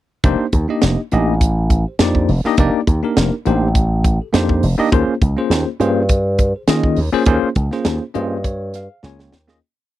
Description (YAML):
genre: electric jazz fusion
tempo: 102 BPM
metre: 4/4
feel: straight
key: unclear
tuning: A4 = 440 Hz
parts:
  - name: bell-like tine electric piano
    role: accompaniment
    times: 0.2-9.6 s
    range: Bb3 to Ab5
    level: -19 LUFS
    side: left 2 dB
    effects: medium stereo tremolo
  - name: slap bass with an envelope filter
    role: bass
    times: 0.2-9.6 s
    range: F1 to Eb3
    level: -17 LUFS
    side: equal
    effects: none
  - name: tight funk drum kit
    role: drums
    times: 0.2-9.6 s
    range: hi-hat, kick drum, snare drum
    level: -17 LUFS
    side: equal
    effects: none
room: little or no reverb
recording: dry, close 1970s-style studio recording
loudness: -14 LUFS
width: side -14 dB against mid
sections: 0.2-9.6 groove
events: fade-out 7.3-9.6; tine electric piano fill 7.9-9.6; drum fill 9.0-9.6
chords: 0.2 F13sus4; 4.9 Eb13sus4